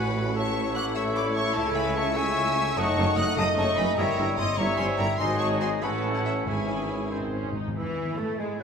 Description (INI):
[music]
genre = classical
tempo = 92-100 BPM (dotted quarters)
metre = 6/8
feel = rubato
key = unclear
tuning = A4 = 440 Hz
[part]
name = warm symphonic violin section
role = melody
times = 0.0-8.6 s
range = G#3 to F#6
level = -34 LUFS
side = left 2 dB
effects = none
[part]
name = clear clarinet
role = second line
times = 0.0-8.6 s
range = E4 to G#5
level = -34 LUFS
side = left 1 dB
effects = none
[part]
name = clear oboe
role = second line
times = 0.0-8.6 s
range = B#4 to A5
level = -37 LUFS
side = right 3 dB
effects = none
[part]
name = hollow concert flute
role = second line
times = 0.0-8.6 s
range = E4 to D#6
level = -33 LUFS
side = left 4 dB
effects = none
[part]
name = warm symphonic violin section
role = second line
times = 0.0-8.6 s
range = G#3 to F#5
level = -35 LUFS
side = left 3 dB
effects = none
[part]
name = mellow bassoon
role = accompaniment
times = 0.0-8.6 s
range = D#3 to C#4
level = -35 LUFS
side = left 2 dB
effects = none
[part]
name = rich studio viola section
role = accompaniment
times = 0.0-8.6 s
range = E3 to F#4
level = -36 LUFS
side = right 1 dB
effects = none
[part]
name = clear French horn section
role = sustained chords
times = 0.0-8.6 s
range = D#3 to F#4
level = -34 LUFS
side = left 2 dB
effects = none
[part]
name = mellow trumpet section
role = stabs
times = 0.0-7.5 s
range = G#4 to D#5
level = -32 LUFS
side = right 1 dB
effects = none
[part]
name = clear tuba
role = bass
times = 0.0-7.5 s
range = F#1 to C#2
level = -35 LUFS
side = right 2 dB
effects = none
[part]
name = rich symphonic cello section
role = bass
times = 0.0-8.6 s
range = F#2 to A3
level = -33 LUFS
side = right 2 dB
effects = none
[part]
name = rich symphonic double bass section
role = bass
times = 0.0-8.6 s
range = F#1 to A2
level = -34 LUFS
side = right 2 dB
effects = none
[part]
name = timpani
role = percussion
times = 5.2-7.7 s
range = G#2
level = -36 LUFS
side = left 1 dB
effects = none
[sound]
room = wet scoring stage reverb, RT60 1.6 s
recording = minimal, uncompressed stereo recording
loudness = -23 LUFS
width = side -6 dB against mid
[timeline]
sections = 0.0-7.8 A section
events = timpani fill 7.1-7.8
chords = 0.4 A; 1.6 A/C#; 2.8 D#m7b5/F#; 4.0 Gdim7; 5.2 G#5; 5.8 A; 6.5 C#m/G#; 7.1 G#; 7.8 F#m9/E (rootless)